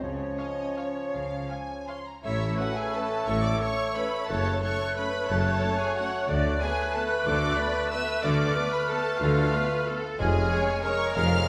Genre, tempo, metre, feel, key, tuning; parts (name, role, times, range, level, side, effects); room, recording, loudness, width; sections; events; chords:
classical, orchestral ballroom waltz; 154-200 BPM; 3/4; rubato; A4 = 440 Hz
clear studio violin section; melody; 0.0-11.5 s; Db5 to F6; -37 LUFS; equal
bright small flute group; second line; 0.0-11.5 s; Db5 to F#6; -36 LUFS; equal
dark clarinet; second line; 0.0-11.5 s; B4 to C#5; -38 LUFS; equal
clear bassoon; accompaniment; 0.0-11.5 s; F3 to A3; -36 LUFS; equal
dark French horn section; sustained chords; 0.0-11.0 s; Ab3 to C#4; -41 LUFS; equal
rich symphonic cello section; bass; 0.0-11.4 s; F2 to D3; -35 LUFS; equal
rich symphonic double bass section; bass; 0.0-11.4 s; F1 to D2; -36 LUFS; equal
warm symphonic violin section; second line; 0.4-11.5 s; E4 to C6; -37 LUFS; equal
rich symphonic viola section; accompaniment; 0.4-11.5 s; Ab4 to F5; -36 LUFS; equal
mellow tuba; bass; 2.2-11.4 s; F1 to D2; -36 LUFS; equal
wet scoring stage reverb, RT60 1.9 s; -27 LUFS; mono
0.0-2.2 A section; 2.2-11.5 B section
0.0 Db; 2.2 A; 4.3 F#m; 6.3 Bm7/D; 10.2 Db/F